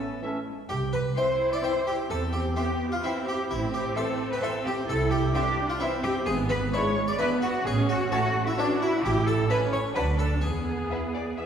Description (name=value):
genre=cinematic, playful, whimsical film cue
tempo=130 BPM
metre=3/4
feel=straight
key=C major, A major from 6.3 s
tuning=A4 = 441 Hz
part: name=harpsichord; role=melody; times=0.0-11.5 s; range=D4 to D5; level=-30 LUFS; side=left 1 dB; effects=none
part: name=warm French horn section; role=sustained chords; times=0.0-11.5 s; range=E3 to D4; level=-39 LUFS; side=left 2 dB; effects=none
part: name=warm studio cello section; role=bass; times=0.0-11.5 s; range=G#3 to D5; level=-30 LUFS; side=equal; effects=none
part: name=warm studio violin section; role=melody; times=0.2-11.5 s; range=B4 to C6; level=-40 LUFS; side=left 3 dB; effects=none
part: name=warm studio violin section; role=second line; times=0.2-11.5 s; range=C#4 to G5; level=-38 LUFS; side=left 3 dB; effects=none
part: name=warm studio viola section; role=accompaniment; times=0.2-11.5 s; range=G#3 to F#4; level=-31 LUFS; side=right 1 dB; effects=none
part: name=warm studio double bass section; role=bass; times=0.7-10.8 s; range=G#1 to E2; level=-30 LUFS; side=right 3 dB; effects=none
room=wet scoring stage reverb, RT60 1.9 s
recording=heard from further back in the room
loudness=-24 LUFS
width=side -8 dB against mid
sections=0.7-11.5 A section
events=none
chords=0.0 A; 0.7 C; 2.1 C/E; 3.5 Am; 4.9 Am/C; 6.3 E7/G#; 7.6 A; 9.0 A7; 10.0 D; 10.4 E